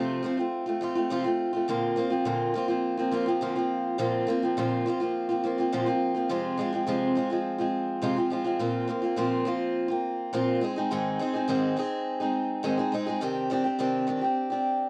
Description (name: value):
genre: pop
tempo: 104 BPM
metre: 4/4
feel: straight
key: unclear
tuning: A4 = 439 Hz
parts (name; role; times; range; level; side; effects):
- picked steel-string acoustic guitar; solo; 0.0-14.9 s; F2 to Ab4; -28 LUFS; equal; none
room: light reverb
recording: worn, warbling old tape, cassette tape, warbly pitch drift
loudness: -28 LUFS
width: mono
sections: 0.0-6.3 A section; 6.3-14.9 B section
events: none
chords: 0.0 F/C; 1.7 Bbadd9; 6.3 Fm; 8.6 Bbsus2; 10.6 Ab; 13.2 Cmadd9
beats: 0.53 1.10 | 1.68 2.26 2.84 3.41 | 3.99 4.57 5.14 5.72 | 6.30 6.88 7.45 8.03 | 8.61 9.18 9.76 10.33 | 10.91 11.49 12.06 12.64 | 13.21 13.79 14.37